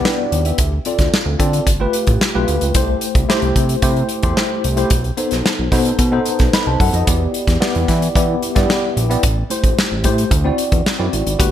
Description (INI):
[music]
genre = polished 1980s jazz-funk pop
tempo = 111 BPM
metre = 4/4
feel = straight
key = unclear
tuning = A4 = 439 Hz
[part]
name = tine electric piano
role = accompaniment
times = 0.0-11.5 s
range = A3 to B5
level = -19 LUFS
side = left 1 dB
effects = overdrive, fast stereo tremolo, analog chorus
[part]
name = modern studio drum kit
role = drums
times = 0.1-11.5 s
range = hi-hat, kick drum, snare drum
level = -18 LUFS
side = equal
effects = none
[part]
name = fat analog bass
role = bass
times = 0.3-11.5 s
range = G1 to E3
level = -19 LUFS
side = equal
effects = none
[sound]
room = light reverb, small room reverb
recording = bright 1980s-style digital production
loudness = -14 LUFS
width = side -11 dB against mid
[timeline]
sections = 0.0-11.5 A section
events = none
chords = 0.0 G6; 0.6 Dm7; 1.7 G9; 2.8 C6; 4.9 B7b9; 7.1 Em7; 9.2 Am7; 10.3 D9